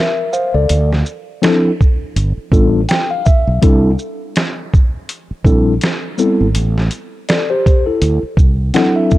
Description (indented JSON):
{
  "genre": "hip hop, jazz-hop",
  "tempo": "82 BPM",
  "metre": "4/4",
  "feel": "swing 58% on 16ths",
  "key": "unclear",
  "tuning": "A4 = 443 Hz",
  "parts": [
    { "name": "mellow tine electric piano", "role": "accompaniment", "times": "0.0-9.2 s", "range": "F3 to G5", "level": "-16 LUFS", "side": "left 1 dB", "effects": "slow stereo tremolo" },
    { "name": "boom bap sampler-style drum kit", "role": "drums", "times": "0.3-9.2 s", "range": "hi-hat, kick drum, shaker, snare drum", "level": "-14 LUFS", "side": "right 1 dB", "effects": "none" },
    { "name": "fretless electric bass", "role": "bass", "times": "0.5-8.7 s", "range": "G1 to D2", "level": "-15 LUFS", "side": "equal", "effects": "none" }
  ],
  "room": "light reverb",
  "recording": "dark, warm production",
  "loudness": "-12 LUFS",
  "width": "side -16 dB against mid",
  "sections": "0.0-9.2 A section",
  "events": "tine electric piano fill 2.5-3.6, 8.4-9.2",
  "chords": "0.0 Gm7 (rootless); 0.7 Dm7; 2.2 G7; 3.6 C69; 6.5 Am7; 8.0 D7"
}